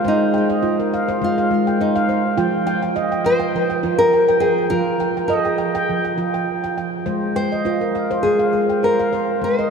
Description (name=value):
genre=world meditative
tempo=102 BPM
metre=4/4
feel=swing 55% on 16ths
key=Ab major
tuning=A4 = 442 Hz
part: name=nylon-string guitar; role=melody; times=0.0-9.7 s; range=Eb4 to C5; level=-20 LUFS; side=left 1 dB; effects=ping-pong delay
part: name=handpan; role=arpeggios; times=0.0-9.7 s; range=F3 to G5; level=-19 LUFS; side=right 1 dB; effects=none
room=wet cathedral reverb, RT60 6.3 s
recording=in a vast, echoing space, cassette tape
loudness=-16 LUFS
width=side -6 dB against mid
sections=0.0-9.7 A section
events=none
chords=0.0 Ab; 2.4 Fm; 7.1 Ab